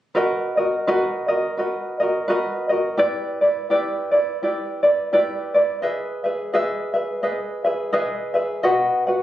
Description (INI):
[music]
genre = hawaiian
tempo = 85 BPM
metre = 4/4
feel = swing 59% on 8ths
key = B major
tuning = A4 = 439 Hz
[part]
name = tenor ukulele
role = accompaniment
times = 0.1-9.2 s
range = E4 to F#5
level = -19 LUFS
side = equal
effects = none
[sound]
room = little or no reverb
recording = recorded on a phone in the room, club reverb, compression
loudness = -19 LUFS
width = side -13 dB against mid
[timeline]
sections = 0.2-9.2 A section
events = none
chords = 0.2 Bmaj7; 3.0 G6; 5.8 Emaj7; 8.6 B/F#